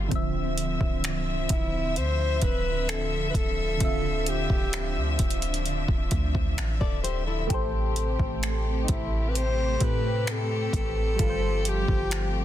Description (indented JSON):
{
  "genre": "contemporary R&B",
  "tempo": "65 BPM",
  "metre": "4/4",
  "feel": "straight",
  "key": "unclear",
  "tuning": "A4 = 438 Hz",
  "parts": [
    { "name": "soft electric-piano-like synth keys", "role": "accompaniment", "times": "0.0-12.4 s", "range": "D3 to E5", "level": "-32 LUFS", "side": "right 2 dB", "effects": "chorus, phaser" },
    { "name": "warm studio string section", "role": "sustained chords", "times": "0.0-12.4 s", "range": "C3 to E5", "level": "-33 LUFS", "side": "left 2 dB", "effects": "sidechain pumping" },
    { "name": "soft 808-style bass", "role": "bass", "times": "0.0-12.4 s", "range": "C1 to A2", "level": "-29 LUFS", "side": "equal", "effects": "none" },
    { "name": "smooth R&B drum kit", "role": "drums", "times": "0.1-12.3 s", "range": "finger snaps, hi-hat, kick drum", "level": "-28 LUFS", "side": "equal", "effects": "overdrive, soft clipping on snare" },
    { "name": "breathy alto saxophone", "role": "melody", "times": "1.5-12.4 s", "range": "D#4 to C5", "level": "-30 LUFS", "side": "left 1 dB", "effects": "digital delay" },
    { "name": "flamenco guitar", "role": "arpeggios", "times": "6.8-7.7 s", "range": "E4 to D5", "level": "-34 LUFS", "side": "left 9 dB", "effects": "digital delay" }
  ],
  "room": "small room ambience",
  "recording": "dense, heavily limited modern master",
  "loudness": "-24 LUFS",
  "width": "side -12 dB against mid",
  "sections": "0.0-12.4 A section",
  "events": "none",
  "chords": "0.1 Dm9; 7.5 Am9; 11.2 G9sus4"
}